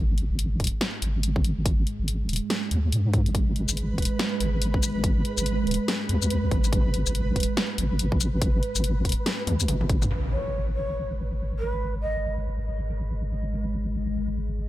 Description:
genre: deep dubstep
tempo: 142 BPM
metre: 4/4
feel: swing 60% on 16ths, half-time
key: G# minor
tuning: A4 = 440 Hz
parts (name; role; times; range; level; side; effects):
- dark analog pad; sustained chords; 0.0-14.7 s; G#3; -33 LUFS; right 2 dB; chorus, phaser
- deep soft wobble bass; bass; 0.0-14.7 s; D#1 to G#2; -26 LUFS; equal; chorus
- dubstep drum kit; drums; 0.2-10.1 s; hi-hat, shaker, snare drum, toms; -28 LUFS; left 2 dB; none
- electronic kick drum; drums; 0.6-10.0 s; none; -25 LUFS; equal; none
- flickering grainy texture; texture; 3.8-10.1 s; B4; -35 LUFS; right 2 dB; built-in reverb
- impact; sound effects; 10.1-11.8 s; none; -33 LUFS; equal; none
- mellow hollow shakuhachi; melody; 10.3-12.3 s; B4 to D#5; -33 LUFS; right 1 dB; dub echo
room: digital ambience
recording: none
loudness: -23 LUFS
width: side -15 dB against mid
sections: 0.0-10.1 A section; 10.1-14.7 B section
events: drum fill 9.5-10.1; impact 10.1-11.8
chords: 0.0 G#m; 10.1 N.C.

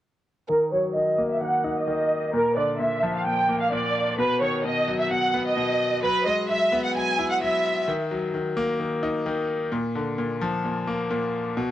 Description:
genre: hip hop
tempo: 130 BPM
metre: 4/4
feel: half-time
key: unclear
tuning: A4 = 441 Hz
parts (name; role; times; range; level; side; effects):
- warm studio violin section; melody; 0.5-7.8 s; Bb4 to G#5; -23 LUFS; right 1 dB; low-pass filter, cassette tape
- bright grand piano; accompaniment; 0.5-11.7 s; Bb2 to E4; -26 LUFS; left 2 dB; low-pass filter
room: light reverb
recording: home recording on cassette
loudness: -22 LUFS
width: side -13 dB against mid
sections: 0.5-7.9 A section; 7.9-11.7 B section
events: filter sweep 0.5-7.9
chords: 0.5 Ebm; 2.3 Bb; 4.2 B; 6.0 Eadd9; 7.9 Ebm; 9.7 Bb

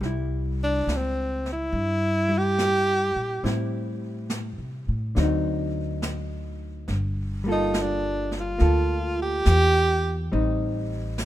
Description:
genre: jazz ballad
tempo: 70 BPM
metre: 4/4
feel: swing 67% on 8ths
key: G minor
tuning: A4 = 439 Hz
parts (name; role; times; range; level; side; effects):
- hollow-body jazz guitar; accompaniment; 0.0-11.2 s; D3 to A4; -29 LUFS; equal; none
- upright bass; bass; 0.0-11.2 s; G1 to C3; -26 LUFS; equal; none
- jazz brush drum kit; drums; 0.0-11.2 s; brushed snare drum, hi-hat, snare drum; -34 LUFS; right 1 dB; none
- clear tenor saxophone; melody; 0.6-10.3 s; C4 to G4; -24 LUFS; right 1 dB; none
room: little or no reverb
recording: minimal, uncompressed stereo recording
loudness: -22 LUFS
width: side -14 dB against mid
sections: 0.0-11.2 A section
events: tenor saxophone solo 0.0-11.2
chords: 0.0 C; 3.4 Am7; 5.2 D7b9; 6.9 Gm9; 10.3 Am7b5

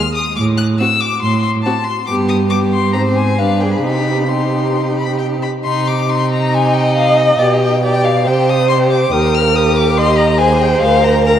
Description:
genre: quick classical-period movement for string quartet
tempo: 139 BPM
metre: 4/4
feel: rubato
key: C minor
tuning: A4 = 439 Hz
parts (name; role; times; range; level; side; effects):
- rich violin; melody; 0.0-11.4 s; D5 to F#6; -18 LUFS; left 6 dB; none
- clear violin; second line; 0.0-11.3 s; Eb4 to C5; -19 LUFS; left 2 dB; none
- dark viola; accompaniment; 0.0-11.4 s; B3 to Eb5; -18 LUFS; right 1 dB; none
- rich cello; bass; 0.4-11.4 s; D2 to C3; -16 LUFS; right 3 dB; none
room: wet cathedral reverb, RT60 6.4 s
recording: in a vast, echoing space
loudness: -12 LUFS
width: side -10 dB against mid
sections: 0.0-5.7 A section; 5.7-11.4 A section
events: none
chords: 0.4 Am; 2.1 G; 3.0 Ab; 3.4 G; 3.8 Cm; 7.4 G/B; 8.3 C5; 9.1 Eb; 10.8 Bb/D

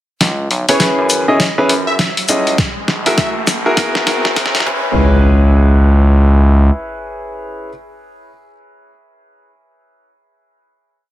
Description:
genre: glitch hop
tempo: 101 BPM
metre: 4/4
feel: swing 61% on 16ths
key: C# dorian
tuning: A4 = 440 Hz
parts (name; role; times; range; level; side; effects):
- gritty driven synth bass; bass; 0.2-6.7 s; A#1 to F#2; -12 LUFS; equal; high-pass filter
- boom bap sampler-style drum kit; drums; 0.2-4.7 s; hi-hat, shaker, snare drum; -16 LUFS; equal; studio reverb
- riser and impact; sound effects; 1.2-7.7 s; none; -24 LUFS; equal; none
- plucky unison lead; melody; 0.7-3.3 s; C#5 to E5; -23 LUFS; equal; cassette tape, dub echo
- bright baby grand piano; stabs; 0.7-7.7 s; C#4 to D#5; -17 LUFS; equal; sidechain pumping, low-pass filter, dub echo
- electronic kick drum; drums; 2.6-4.8 s; none; -21 LUFS; equal; studio reverb
room: light reverb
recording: dense, heavily limited modern master, high-pass filter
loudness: -11 LUFS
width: side -14 dB against mid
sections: 0.2-5.0 build; 5.0-7.3 final hit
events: build-up 0.2-5.0; drum fill 0.2-5.0; filter sweep on grand piano 0.2-5.0; riser 1.2-5.0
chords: 0.2 C#m7; 2.6 F#9; 4.7 C#m7

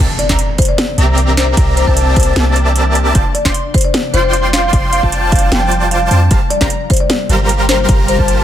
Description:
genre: future bass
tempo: 152 BPM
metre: 4/4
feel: half-time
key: unclear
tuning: A4 = 440 Hz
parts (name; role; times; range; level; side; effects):
- ethereal airy pad; sustained chords; 0.2-8.4 s; C3 to F4; -25 LUFS; left 2 dB; ensemble chorus, built-in reverb, sidechain pumping
- airy dreamy lead; arpeggios; 0.0-8.4 s; A5 to C6; -22 LUFS; equal; chorus, sidechain pumping
- dense compressed supersaw; riff; 0.0-8.4 s; G3 to C6; -17 LUFS; right 1 dB; sidechain pumping
- warm 808-style bass; bass; 0.0-8.4 s; F1 to F2; -14 LUFS; equal; sidechain pumping
- impact; sound effects; 0.0-1.6 s; none; -23 LUFS; equal; none
- marimba with medium mallets; melody; 0.2-8.2 s; C5 to G5; -19 LUFS; left 3 dB; sidechain pumping, dub echo
- trap drum kit; drums; 0.2-8.4 s; hi-hat, snare drum; -18 LUFS; right 1 dB; overdrive
- electronic kick drum; drums; 0.3-8.3 s; none; -14 LUFS; equal; none
room: little or no reverb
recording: none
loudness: -10 LUFS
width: side -11 dB against mid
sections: 0.0-8.4 A section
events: drop 0.0-8.4; impact 0.0-1.6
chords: 0.0 C13; 3.2 F69; 6.3 Gm11

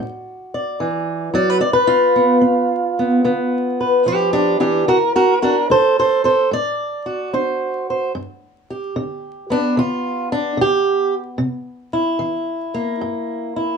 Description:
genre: acoustic country blues, solo or duo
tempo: 74 BPM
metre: 4/4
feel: swing 67% on 8ths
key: unclear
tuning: A4 = 440 Hz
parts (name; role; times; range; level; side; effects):
- fingerpicked swing-style acoustic guitar; solo; 0.0-13.8 s; G2 to D5; -16 LUFS; right 1 dB; none
room: light reverb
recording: vinyl crackle, small room ambience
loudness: -16 LUFS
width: side -6 dB against mid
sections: 0.0-8.1 A section; 8.1-13.8 B section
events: steel-string acoustic guitar solo 8.1-13.8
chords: 0.0 D; 1.6 G7; 4.9 D7; 8.1 G; 11.4 C7

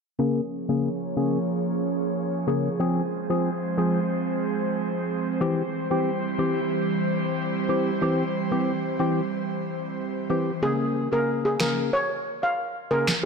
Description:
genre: dancehall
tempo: 92 BPM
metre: 4/4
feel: straight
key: unclear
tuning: A4 = 440 Hz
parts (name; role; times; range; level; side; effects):
- percussive organ stab; accompaniment; 0.2-13.1 s; Db3 to Ab4; -25 LUFS; left 2 dB; chorus, low-pass filter
- airy breathy pad; sustained chords; 0.4-10.6 s; E3 to Db5; -26 LUFS; right 2 dB; chorus, low-pass filter
- steel pan; melody; 10.6-13.0 s; Ab4 to F5; -24 LUFS; right 1 dB; tape echo
- electronic finger snaps and snare drum; drums; 11.6-13.2 s; none; -26 LUFS; right 1 dB; none
room: moderate lush hall reverb, RT60 2.0 s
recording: dark, warm production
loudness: -23 LUFS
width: side -5 dB against mid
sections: 0.2-10.6 A section; 10.6-13.3 B section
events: filter sweep 0.2-10.6; kick muted 10.6-13.3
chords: 0.2 Bbm7; 2.8 Fm; 5.4 C; 10.6 Bbm7

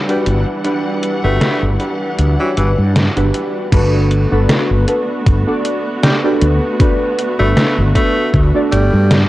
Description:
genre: vaporwave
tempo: 78 BPM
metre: 4/4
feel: swing 55% on 16ths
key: G major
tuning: A4 = 439 Hz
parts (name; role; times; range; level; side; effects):
- warbly lo-fi synth keys; accompaniment; 0.0-9.3 s; D4 to D5; -18 LUFS; equal; wide subtle chorus, tape echo
- clear studio string section; sustained chords; 0.0-9.3 s; E3 to F#5; -23 LUFS; equal; vintage 12-bit sampler grit
- edgy tenor saxophone; melody; 0.1-9.3 s; E3 to A3; -21 LUFS; equal; tape echo
- detuned 8-bit digital drum machine; drums; 0.1-9.3 s; crash cymbal, hi-hat, snare drum; -17 LUFS; equal; overdrive, low-pass filter on hats, low-pass filter on snare, low-pass filter on cymbals, low-pass filter on room
- mellow fretless electric bass; bass; 0.3-9.2 s; G1 to G2; -14 LUFS; equal; lush chorus
- electronic kick drum; drums; 3.7-8.5 s; none; -14 LUFS; equal; overdrive
room: light reverb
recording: worn, warbling old tape, cassette tape, warbly pitch drift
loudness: -12 LUFS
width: side -16 dB against mid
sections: 0.0-3.7 A section; 3.7-9.3 B section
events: filter sweep on drum 0.0-3.7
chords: 0.0 Em9/G; 3.7 Gmaj9

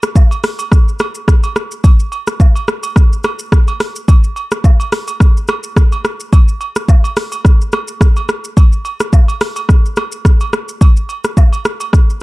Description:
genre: afrobeats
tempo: 107 BPM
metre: 4/4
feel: swing 55% on 16ths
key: none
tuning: none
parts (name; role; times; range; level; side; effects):
- deep house drum kit; drums; 0.0-12.2 s; hi-hat, kick drum, rim click, shaker; -9 LUFS; equal; none
- woodblock and agogo bells; percussion; 0.2-11.9 s; none; -24 LUFS; right 5 dB; none
room: little or no reverb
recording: dark, warm production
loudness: -10 LUFS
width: side -22 dB against mid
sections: 0.0-12.2 A section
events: none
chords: none

